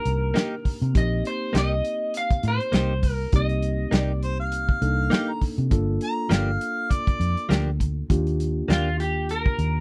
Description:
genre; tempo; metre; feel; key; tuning
straight-eighth soul blues; 101 BPM; 4/4; swing 56% on 16ths; unclear; A4 = 440 Hz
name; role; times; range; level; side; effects
electric guitar at the edge of break-up; melody; 0.0-4.2, 8.7-9.8 s; F4 to F5; -30 LUFS; equal; lush chorus
mellow reed electric piano; accompaniment; 0.0-9.8 s; Bb3 to A4; -34 LUFS; equal; none
vintage muted fingered electric bass; bass; 0.1-9.8 s; G1 to C3; -27 LUFS; equal; none
warm soul drum kit; drums; 0.1-9.7 s; hi-hat, kick drum, snare drum; -26 LUFS; equal; none
direct-recorded clean electric guitar; stabs; 0.3-8.9 s; F3 to G4; -30 LUFS; equal; none
mellow harmonica; second line; 4.2-7.5 s; C5 to Bb5; -30 LUFS; equal; overdrive
room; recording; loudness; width
little or no reverb; none; -24 LUFS; mono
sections
0.0-9.8 A section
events
none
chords
0.0 Cm7; 5.7 Gm7; 8.1 Ebmaj7

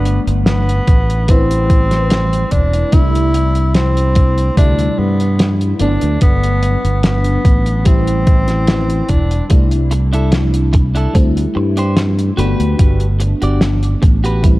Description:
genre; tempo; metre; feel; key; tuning
vaporwave; 73 BPM; 4/4; swing 53% on 16ths; G major; A4 = 439 Hz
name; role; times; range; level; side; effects
breathy tenor saxophone; melody; 0.0-9.5 s; B3 to E4; -20 LUFS; equal; tape echo
FM electric piano with soft pad layer; accompaniment; 0.0-14.6 s; C3 to B4; -20 LUFS; left 1 dB; phaser, analog chorus, analog delay
modern bright fingered electric bass; bass; 0.0-14.6 s; E1 to G2; -15 LUFS; equal; none
cloth-damped thuddy drum kit; drums; 0.1-14.6 s; hi-hat, snare drum; -20 LUFS; equal; none
electronic kick drum; drums; 0.9-14.6 s; none; -11 LUFS; equal; overdrive
clean electric guitar; riff; 9.9-14.4 s; D4 to D5; -23 LUFS; right 1 dB; lush chorus, analog delay
room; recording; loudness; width
light reverb, small room ambience; dark, warm production; -11 LUFS; side -18 dB against mid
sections
0.0-14.6 A section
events
none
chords
0.0 Gmaj7; 1.3 Am9; 2.9 C69; 4.6 D7sus4; 5.8 Gmaj7; 7.9 Am9; 9.5 C69; 11.2 D7sus4; 12.4 Gmaj7

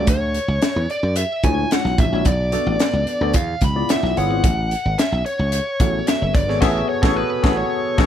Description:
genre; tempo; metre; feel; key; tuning
polished 1980s jazz-funk pop; 110 BPM; 4/4; straight; A major; A4 = 440 Hz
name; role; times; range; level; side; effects
bluesy overdriven lead guitar; melody; 0.0-8.1 s; B4 to B5; -23 LUFS; equal; distortion
tine electric piano; accompaniment; 0.0-8.1 s; G#3 to E5; -22 LUFS; left 2 dB; medium stereo tremolo, wide subtle chorus
dry thumbed slap bass; bass; 0.0-8.1 s; F#1 to F#2; -22 LUFS; equal; none
crisp fusion drum kit; drums; 0.1-8.1 s; crash cymbal, hi-hat, kick drum, snare drum; -20 LUFS; equal; none
room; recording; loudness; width
little or no reverb; none; -17 LUFS; side -10 dB against mid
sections
0.0-8.1 A section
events
band accent 6.6-8.1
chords
0.1 Dmaj9#11; 2.3 Bm7; 3.3 E7b9; 4.4 Amaj13

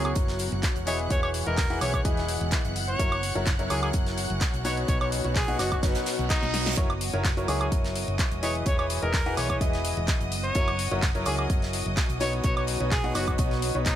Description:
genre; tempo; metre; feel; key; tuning
piano house; 127 BPM; 4/4; straight; F# mixolydian; A4 = 440 Hz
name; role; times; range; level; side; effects
clear trumpet; melody; 0.0-14.0 s; D#4 to C#5; -33 LUFS; equal; ping-pong delay
clear studio violin section; sustained chords; 0.0-14.0 s; D#5 to F#6; -38 LUFS; equal; sidechain pumping
bright grand piano; riff; 0.0-13.9 s; B2 to F#5; -31 LUFS; left 1 dB; sidechain pumping, ping-pong delay
hollow-body short-scale fingered electric bass; bass; 0.0-13.9 s; E1 to C#2; -31 LUFS; equal; sidechain pumping
granular cloud pad; texture; 0.0-14.0 s; B3 to G#5; -36 LUFS; right 1 dB; built-in reverb, sidechain pumping
punchy analog drum machine; drums; 0.1-14.0 s; handclaps, hi-hat, snare drum, woodblock; -32 LUFS; equal; none
electronic kick drum; drums; 0.2-14.0 s; none; -27 LUFS; equal; none
tight metal drum kit; drums; 0.2-14.0 s; hi-hat, snare drum; -39 LUFS; right 3 dB; sidechain pumping on hats, high-pass filter on hats, high-pass filter on snare, high-pass filter on room
reverse cymbal; sound effects; 6.0-6.8 s; none; -34 LUFS; right 6 dB; none
room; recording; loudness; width
studio reverb; none; -24 LUFS; side -11 dB against mid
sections
0.0-14.0 A section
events
reverse cymbal 6.0-6.8; drum fill 6.4-6.8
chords
0.0 F#7; 0.9 Emaj7; 2.8 F#7; 4.6 Badd9; 6.8 F#7; 8.4 Emaj7; 10.3 F#7; 12.2 Badd9

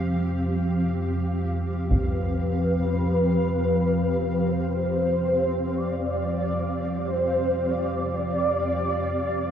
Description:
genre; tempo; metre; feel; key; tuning
dark ambient drone; free time; none; none; unclear; A4 = 439 Hz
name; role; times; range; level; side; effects
granular cloud pad; sustained chords; 0.0-9.5 s; C4 to F5; -30 LUFS; equal; built-in reverb
deep rumbling drone; drone; 0.0-9.5 s; F2 to F3; -26 LUFS; equal; built-in reverb, phaser
taiko ensemble; percussion; 1.9-2.2 s; none; -28 LUFS; equal; low-pass filter on perc
mellow horn-like synth lead; melody; 2.0-9.5 s; B4 to D5; -26 LUFS; equal; phaser, ensemble chorus, diffuse ambient delay
room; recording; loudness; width
wet cathedral reverb, RT60 5.2 s; in a vast, echoing space, nothing above 7.7 kHz; -22 LUFS; side -9 dB against mid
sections
0.0-9.5 A section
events
none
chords
0.0 Fsus2

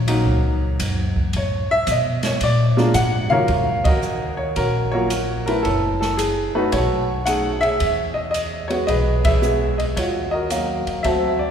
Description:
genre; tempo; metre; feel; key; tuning
jazz piano trio; 111 BPM; 4/4; swing 68% on 8ths; Eb minor from 3.5 s; A4 = 440 Hz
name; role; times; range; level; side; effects
warm upright piano; melody; 0.0-11.5 s; D#2 to F#5; -20 LUFS; equal; none
upright bass; bass; 0.0-11.5 s; Gb1 to B2; -23 LUFS; equal; none
open jazz drum kit; drums; 0.1-11.2 s; hi-hat, kick drum, ride cymbal, snare drum; -27 LUFS; right 1 dB; none
room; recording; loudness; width
wet concert hall reverb, RT60 2.5 s; recorded in a church or concert hall; -18 LUFS; side -8 dB against mid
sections
0.0-3.5 A section; 3.5-11.5 B section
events
upright piano solo 0.0-3.5; band accent 3.8, 9.2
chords
0.0 D#m7; 1.3 Asus2; 2.4 A#7; 3.5 Ebm7; 5.6 Gbm7; 6.7 B9; 7.8 E6; 10.0 Ebm9

